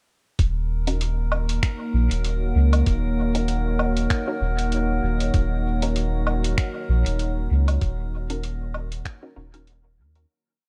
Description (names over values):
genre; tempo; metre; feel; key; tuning
ambient dub; 97 BPM; 4/4; swing 56% on 16ths; Eb minor; A4 = 440 Hz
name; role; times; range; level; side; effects
deep dark ambient pad; sustained chords; 1.1-10.3 s; Bb3 to Gb5; -30 LUFS; equal; chorus, built-in reverb
soft dub sub bass; bass; 0.4-10.3 s; Eb1 to Eb2; -25 LUFS; equal; tube saturation
electronic kick drum; drums; 0.4-9.2 s; none; -25 LUFS; equal; small room ambience
lo-fi sampler-style drum kit; drums; 0.4-10.3 s; finger snaps, hi-hat, woodblock; -33 LUFS; equal; small room ambience, dub echo
drifting glass-harmonics texture; texture; 0.4-10.3 s; Bb4; -39 LUFS; equal; chorus, built-in reverb
filtered dub chord stab; stabs; 0.9-10.3 s; Db4 to Bb4; -37 LUFS; equal; phaser, dub echo
room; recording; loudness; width
digital ambience; none; -23 LUFS; mono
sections
0.4-10.3 groove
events
filter sweep on synth stab 0.4-10.3; fade-out 7.0-10.3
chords
0.4 Ebm7